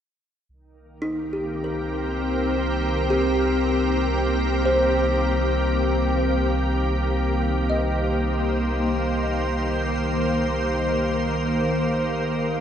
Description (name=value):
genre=ambient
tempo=free time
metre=none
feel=none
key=C minor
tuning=A4 = 441 Hz
part: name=soft additive organ-like pad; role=sustained chords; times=1.1-12.6 s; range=Eb3 to C5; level=-23 LUFS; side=left 1 dB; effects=ensemble chorus, built-in reverb, shimmer reverb
part: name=warm sub bass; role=bass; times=0.5-12.6 s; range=C2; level=-27 LUFS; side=right 1 dB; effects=none
part: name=kalimba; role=arpeggios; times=1.0-11.2 s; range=Eb4 to Eb5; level=-28 LUFS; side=equal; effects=tape echo, shimmer reverb
room=wet cathedral reverb, RT60 5.4 s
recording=none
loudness=-20 LUFS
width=side -9 dB against mid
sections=0.5-12.6 A section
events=none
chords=0.5 Cm7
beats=free time